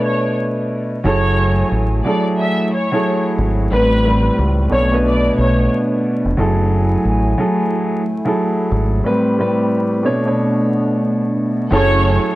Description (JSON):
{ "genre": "hip hop", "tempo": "90 BPM", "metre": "4/4", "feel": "swing 60% on 16ths", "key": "F# minor", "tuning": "A4 = 438 Hz", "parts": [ { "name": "rich studio violin section", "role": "melody", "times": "0.0-5.7, 11.7-12.3 s", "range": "B4 to E5", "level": "-21 LUFS", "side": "equal", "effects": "high-pass filter, low-pass filter, analog delay" }, { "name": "dark baby grand piano", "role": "accompaniment", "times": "0.0-12.4 s", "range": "A2 to C#5", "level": "-17 LUFS", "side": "equal", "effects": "cassette tape, high-pass filter, low-pass filter" }, { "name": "dark analog pad", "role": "sustained chords", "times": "1.1-12.4 s", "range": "F#3 to G#5", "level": "-23 LUFS", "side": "right 1 dB", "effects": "lush chorus, high-pass filter, low-pass filter" }, { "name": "deep dub fingered electric bass", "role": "bass", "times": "1.1-12.2 s", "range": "E#1 to C#2", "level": "-16 LUFS", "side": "equal", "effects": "none" }, { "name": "dark studio string section", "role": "stabs", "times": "11.7-12.3 s", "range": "C#4 to C#5", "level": "-21 LUFS", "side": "equal", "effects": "high-pass filter, low-pass filter" } ], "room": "small room ambience", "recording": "dry, gritty hardware recording, vinyl crackle", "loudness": "-14 LUFS", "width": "side -17 dB against mid", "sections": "0.0-11.7 A section", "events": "none", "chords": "0.0 Bm9; 1.0 F#m9; 3.7 Am9; 4.7 Bm9; 6.4 F#m9; 9.0 Am9; 10.0 Bm9; 11.7 F#m9", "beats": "0.38 | 1.05 1.72 2.38 3.05 | 3.71 4.38 5.05 5.71 | 6.38 7.05 7.71 8.38 | 9.05 9.71 10.38 11.05 | 11.71" }